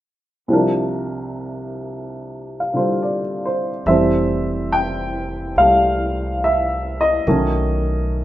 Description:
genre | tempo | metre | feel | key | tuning
jazz ballad | 71 BPM | 4/4 | swing 68% on 8ths | F major | A4 = 440 Hz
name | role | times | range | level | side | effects
warm upright piano | accompaniment | 0.5-8.2 s | C2 to G5 | -18 LUFS | equal | none
upright bass | bass | 3.9-8.2 s | F1 to C2 | -24 LUFS | equal | none
room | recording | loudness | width
moderate studio reverb, RT60 0.9 s | band playing live in one room | -17 LUFS | side -14 dB against mid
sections
0.5-3.9 A section; 3.9-8.2 B section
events
none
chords
0.5 C7sus4; 3.9 Fmaj9; 7.3 B9

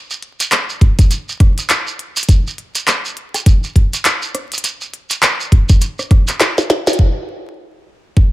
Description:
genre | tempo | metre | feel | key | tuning
glitch hop | 102 BPM | 4/4 | swing 59% on 16ths | none | none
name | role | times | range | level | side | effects
shekere | percussion | 0.1-7.0 s | none | -22 LUFS | right 4 dB | none
glitchy drum kit | drums | 0.2-7.0 s | handclaps, hi-hat, rim click, snare drum | -16 LUFS | equal | low-pass filter on hats, studio ambience, low-pass filter on snare
electronic kick drum | drums | 0.8-8.3 s | none | -9 LUFS | equal | studio ambience
room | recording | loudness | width
little or no reverb | vinyl crackle | -12 LUFS | side -17 dB against mid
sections
0.0-7.0 A section; 7.0-8.3 B section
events
kick drops out 6.4-7.0; drum fill 6.4-7.0; band accent 6.8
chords
none

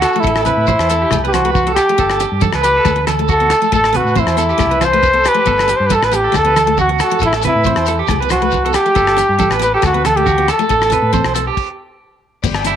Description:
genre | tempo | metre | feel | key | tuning
highlife guitar band | 138 BPM | 4/4 | straight | G major | A4 = 440 Hz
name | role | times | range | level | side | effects
breathy trumpet | melody | 0.0-11.4 s | E4 to C5 | -14 LUFS | equal | none
picked steel-string acoustic guitar | accompaniment | 0.0-12.8 s | A3 to D4 | -24 LUFS | left 12 dB | none
electric guitar at the edge of break-up | arpeggios | 0.0-12.8 s | E4 to C5 | -19 LUFS | right 11 dB | tremolo, slapback echo
fingered electric bass | bass | 0.0-12.8 s | G1 to A2 | -21 LUFS | equal | none
damped 70s drum kit | drums | 0.0-12.8 s | crash cymbal, hi-hat, kick drum, rim click | -21 LUFS | left 4 dB | none
agogo bells | percussion | 0.0-12.7 s | none | -25 LUFS | left 4 dB | none
shekere | percussion | 0.0-12.8 s | none | -27 LUFS | left 6 dB | none
congas | percussion | 0.3-12.5 s | none | -24 LUFS | right 8 dB | none
tonewheel organ | sustained chords | 12.4-12.8 s | D5 to B5 | -26 LUFS | left 3 dB | slow rotary speaker
room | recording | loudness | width
moderate spring reverb, RT60 1.4 s, small room ambience | 1960s-style stereo with parts hard left and right | -11 LUFS | side -9 dB against mid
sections
0.0-12.4 A section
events
stop 11.6-12.4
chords
0.2 Am; 1.1 C5; 2.0 G; 2.9 D6; 3.7 Am; 4.6 C5; 5.5 G; 6.3 D6; 7.2 Am; 8.1 C5; 9.0 G; 9.8 D6; 10.7 Am; 11.6 N.C.

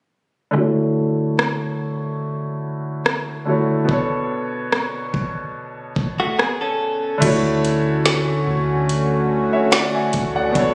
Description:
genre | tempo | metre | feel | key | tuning
contemporary R&B | 72 BPM | 4/4 | swing 54% on 16ths | unclear | A4 = 440 Hz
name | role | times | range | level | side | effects
clear concert grand piano | accompaniment | 0.5-10.7 s | B2 to G#5 | -23 LUFS | equal | low-pass filter
smooth R&B drum kit | drums | 1.4-10.7 s | crash cymbal, hi-hat, kick drum, rim click, snare drum | -23 LUFS | equal | vintage 12-bit sampler grit
direct-recorded clean electric guitar | arpeggios | 6.2-7.2 s | A3 to A4 | -23 LUFS | equal | low-pass filter, digital delay
warm analog pad | sustained chords | 7.2-10.7 s | D3 to F#4 | -23 LUFS | equal | chorus
soft 808-style bass | bass | 7.2-10.7 s | B1 to D2 | -35 LUFS | equal | none
room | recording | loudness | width
light reverb | recorded on a phone in the room, studio reverb, compression | -20 LUFS | mono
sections
0.6-7.2 A section; 7.2-10.7 B section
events
filter sweep 0.6-7.2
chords
0.6 Dmaj7; 3.9 Bm7; 7.2 Dmaj7

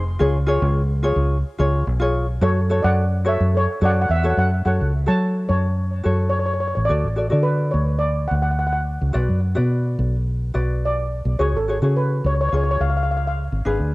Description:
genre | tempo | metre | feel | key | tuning
calypso | 107 BPM | 4/4 | straight | F# minor, F# harmonic minor from 4.7 s | A4 = 441 Hz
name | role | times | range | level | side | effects
ukulele | accompaniment | 0.0-13.9 s | D4 to D5 | -24 LUFS | left 1 dB | cassette tape
fingered electric bass | bass | 0.0-13.9 s | E#1 to F#3 | -19 LUFS | equal | none
steel pan | melody | 2.4-13.3 s | A4 to A5 | -24 LUFS | equal | cassette tape, tape echo
room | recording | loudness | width
light reverb, small room reverb | home recording on cassette | -18 LUFS | side -21 dB against mid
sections
0.0-4.7 A section; 4.7-13.9 B section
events
none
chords
0.2 C#; 2.4 F#m; 6.9 D; 9.1 Bm; 11.4 C#sus4; 12.5 C#

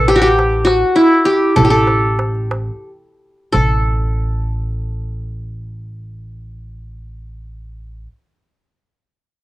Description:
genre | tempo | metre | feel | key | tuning
Arabic maqam ensemble | 56-70 BPM (dotted quarters) | 6/8 | straight | unclear | A4 = 439 Hz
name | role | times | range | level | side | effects
qanun | melody | 0.0-8.0 s | E4 to B4 | -13 LUFS | equal | none
upright bass | bass | 0.0-8.1 s | A1 | -21 LUFS | equal | none
darbuka | percussion | 0.1-3.9 s | none | -21 LUFS | right 2 dB | none
room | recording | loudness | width
moderate studio reverb, RT60 0.6 s | home recording on cassette | -13 LUFS | side -16 dB against mid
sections
0.0-3.5 A section; 3.5-7.8 B section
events
slowing down 0.0-3.5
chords
none

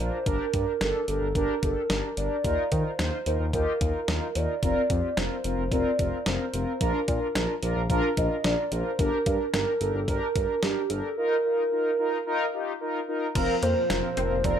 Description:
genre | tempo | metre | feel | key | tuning
synth-pop | 110 BPM | 4/4 | straight | unclear | A4 = 440 Hz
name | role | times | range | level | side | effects
hollow clarinet-like synth lead | melody | 0.0-14.6 s | G4 to Eb5 | -28 LUFS | right 1 dB | chorus, plate reverb, digital delay
mellow synth brass | accompaniment | 0.0-14.6 s | C4 to C5 | -29 LUFS | equal | chorus
smooth synth bass | bass | 0.0-14.6 s | F1 to Eb3 | -30 LUFS | equal | none
clean 12-bit digital drum machine | drums | 0.3-14.6 s | crash cymbal, hi-hat, kick drum, snare drum | -30 LUFS | equal | none
lush unison pad | sustained chords | 13.4-14.6 s | Bb2 to F4 | -35 LUFS | equal | chorus
resonant blip pluck | arpeggios | 13.4-14.6 s | F3 to C4 | -33 LUFS | right 1 dB | chorus, digital delay
room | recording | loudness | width
moderate studio reverb, RT60 0.6 s | none | -24 LUFS | side -9 dB against mid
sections
0.0-13.4 A section; 13.4-14.6 B section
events
none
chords
0.3 Gm; 2.4 Ebsus2; 4.6 Fsus4; 6.8 Bb; 9.0 Gm; 11.2 Ebsus2; 13.4 Fsus4

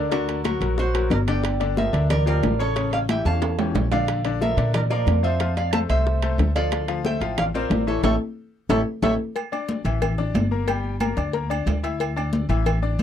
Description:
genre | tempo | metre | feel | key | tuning
latin, salsa | 182 BPM | 4/4 | straight | D minor | A4 = 440 Hz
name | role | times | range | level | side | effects
lap resonator guitar | melody | 0.0-9.1 s | F#4 to A5 | -26 LUFS | right 4 dB | none
bright grand piano | accompaniment | 0.0-13.0 s | C#3 to E6 | -28 LUFS | left 10 dB | none
upright bass | bass | 0.0-13.0 s | G1 to Bb2 | -24 LUFS | equal | none
bongos and cowbell | percussion | 0.1-13.0 s | none | -29 LUFS | left 8 dB | none
congas | percussion | 0.1-13.0 s | none | -29 LUFS | left 2 dB | none
timbales and agogo bells | percussion | 0.1-13.0 s | none | -30 LUFS | right 9 dB | none
room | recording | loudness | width
little or no reverb | dry, close 1970s-style studio recording | -20 LUFS | side -9 dB against mid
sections
0.0-9.4 A section; 9.4-13.0 B section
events
drum fill 3.3-4.1, 8.4-9.4; band accent 8.0-9.4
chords
0.1 Daug7; 1.4 Gm7; 2.8 A7; 4.1 Bb; 5.4 Fmaj7; 6.7 Dm9; 8.0 A7; 9.4 Dsus2; 10.7 Gm; 12.0 Dsus2

